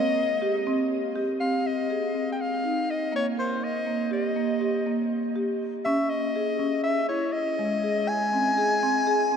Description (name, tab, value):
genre	contemporary instrumental, contemporary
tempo	242 BPM (eighths)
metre	9/8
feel	straight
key	Ab major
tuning	A4 = 443 Hz
part	breathy soprano saxophone	melody	0.0-9.4 s	C5 to Ab5	-26 LUFS	left 2 dB	none
part	marimba with medium mallets	arpeggios	0.0-9.4 s	Ab3 to Bb4	-26 LUFS	right 1 dB	none
room	wet huge ambient reverb, RT60 7.5 s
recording	in a vast, echoing space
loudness	-24 LUFS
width	side -7 dB against mid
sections	0.0-1.4 A section; 1.4-9.4 B section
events	none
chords	0.0 Cm; 1.4 Abadd9 (rootless); 3.6 Eb; 5.9 Dbmadd9; 8.1 Ab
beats	0.16 0.41 0.66 0.90 1.15 | 1.40 1.65 1.89 2.14 2.39 2.64 2.88 3.13 3.38 | 3.63 3.88 4.12 4.37 4.62 4.87 5.12 5.36 5.61 | 5.86 6.11 6.35 6.60 6.85 7.10 7.34 7.59 7.84 | 8.08 8.33 8.58 8.82 9.07 9.32